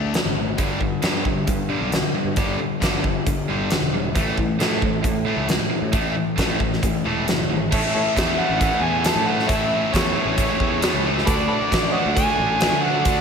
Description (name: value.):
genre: classic rock.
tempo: 135 BPM.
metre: 4/4.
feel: straight.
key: unclear.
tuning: A4 = 438 Hz.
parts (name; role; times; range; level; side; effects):
sludgy distorted guitar; riff; 0.0-13.2 s; G2 to F#4; -26 LUFS; left 10 dB; overdrive, slapback echo.
fuzz picked electric bass; bass; 0.0-13.2 s; E1 to D3; -26 LUFS; right 1 dB; overdrive.
huge arena drum kit; drums; 0.1-13.2 s; crash cymbal, hi-hat, kick drum, snare drum; -23 LUFS; equal; none.
tight distorted guitar; riff; 0.6-13.2 s; G2 to D4; -26 LUFS; right 11 dB; distortion, slapback echo.
overdriven harmonica; melody; 7.7-13.2 s; A4 to A5; -23 LUFS; equal; slapback echo.
mellow reed electric piano; accompaniment; 11.3-13.2 s; F#4 to D5; -30 LUFS; right 6 dB; fast tremolo, slapback echo.
room: moderate lush hall reverb, RT60 2.0 s.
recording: big arena sound.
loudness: -18 LUFS.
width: side -6 dB against mid.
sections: 0.0-7.7 A section; 7.7-13.2 B section.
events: none.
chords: 0.0 D5; 0.6 G5; 4.2 A5; 7.7 A; 11.3 D.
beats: 0.14 | 0.58 1.03 1.47 1.92 | 2.37 2.81 3.26 3.71 | 4.15 4.60 5.04 5.49 | 5.93 6.38 6.83 7.27 | 7.72 8.16 8.61 9.05 | 9.50 9.94 10.39 10.83 | 11.28 11.72 12.16 12.61 | 13.05.